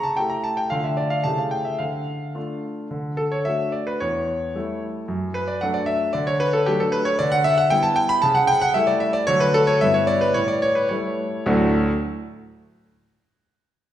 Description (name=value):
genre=classical-period piano sonatina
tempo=103-116 BPM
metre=2/4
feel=rubato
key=D major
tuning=A4 = 440 Hz
part: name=clear concert grand piano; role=solo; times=0.0-11.9 s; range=D2 to C#6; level=-19 LUFS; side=equal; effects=none
room=wet recital hall reverb, RT60 1.4 s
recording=heard from further back in the room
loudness=-19 LUFS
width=side -11 dB against mid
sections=0.0-2.9 A section; 2.9-11.5 A section; 11.5-12.6 B section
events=none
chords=0.0 A7/C#; 0.7 Dm; 1.2 A7/C#; 1.8 Dm; 2.9 D; 4.0 A7/E; 5.1 D/F#; 6.1 D; 7.2 Em7/D; 8.2 A7/C#; 9.3 D; 9.8 Em/G; 10.4 A7; 11.5 D